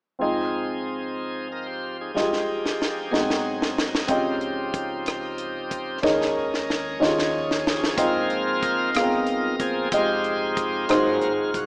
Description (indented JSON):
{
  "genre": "slow gospel",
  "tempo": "62 BPM (dotted quarters)",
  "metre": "6/8",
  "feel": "straight",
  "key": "Ab major",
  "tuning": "A4 = 441 Hz",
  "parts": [
    { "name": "warm grand piano", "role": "accompaniment", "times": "0.2-11.7 s", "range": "Ab2 to F5", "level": "-27 LUFS", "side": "equal", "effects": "none" },
    { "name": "bright tonewheel organ", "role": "sustained chords", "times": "0.2-11.7 s", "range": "F3 to Eb5", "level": "-30 LUFS", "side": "equal", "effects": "fast rotary speaker, overdrive" },
    { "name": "tight funk drum kit", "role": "drums", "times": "2.2-11.7 s", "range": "hi-hat, kick drum, rim click, snare drum", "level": "-30 LUFS", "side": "equal", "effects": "none" },
    { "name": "fingered electric bass", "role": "bass", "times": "4.1-11.7 s", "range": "Fb1 to Eb2", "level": "-48 LUFS", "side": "equal", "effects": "none" }
  ],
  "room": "wet lush hall reverb, RT60 1.8 s, studio reverb",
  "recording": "rough home demo mix, small speaker sound",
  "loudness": "-24 LUFS",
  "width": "mono",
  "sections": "0.2-8.0 A section; 8.0-11.7 B section",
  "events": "drum fill 2.1-4.1, 6.0-8.0; tonewheel organ solo 8.0-11.7",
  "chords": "0.2 Ab6; 2.1 Fm9; 3.1 Ab7; 4.1 Dbmaj9#11; 6.0 Eb7sus4; 7.0 Eb9sus4; 8.0 Ab6; 9.9 Fm9; 10.9 Ab7",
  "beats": "| 0.20 1.18 | 2.15 3.12 | 4.09 5.06 | 6.04 7.01 | 7.98 8.95 | 9.92 10.89"
}